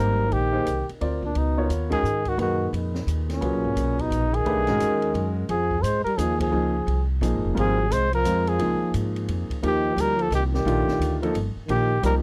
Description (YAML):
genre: modal jazz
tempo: 174 BPM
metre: 3/4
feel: swing 63% on 8ths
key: Db lydian from 5.5 s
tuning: A4 = 440 Hz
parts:
  - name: breathy trumpet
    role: melody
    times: 0.0-12.2 s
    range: Db4 to C5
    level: -28 LUFS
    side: equal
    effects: none
  - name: breathy trombone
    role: second line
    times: 0.0-12.1 s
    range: Bb2 to Ab3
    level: -32 LUFS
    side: equal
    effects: tape echo
  - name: warm grand piano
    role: accompaniment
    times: 0.0-12.2 s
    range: Bb2 to D5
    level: -30 LUFS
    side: equal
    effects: none
  - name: upright bass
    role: bass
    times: 0.0-12.2 s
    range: F1 to Ab2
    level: -28 LUFS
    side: equal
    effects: none
  - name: open jazz drum kit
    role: drums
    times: 0.3-12.1 s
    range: hi-hat, kick drum, ride cymbal, snare drum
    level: -40 LUFS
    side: equal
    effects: none
room: little or no reverb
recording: dry, close 1970s-style studio recording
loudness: -24 LUFS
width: mono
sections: 0.0-5.5 A section; 5.5-12.2 B section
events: band accent 6.4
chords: 0.0 Bb13sus4; 1.4 Db13sus4; 5.5 Dbmaj9; 9.6 Ebmaj9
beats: | 0.32 0.67 1.01 | 1.36 1.70 2.04 | 2.39 2.73 3.08 | 3.42 3.77 4.12 | 4.46 4.80 5.15 | 5.50 5.84 6.18 | 6.53 6.87 7.22 | 7.56 7.91 8.25 | 8.60 8.94 9.28 | 9.63 9.97 10.32 | 10.66 11.00 11.35 | 11.69 12.03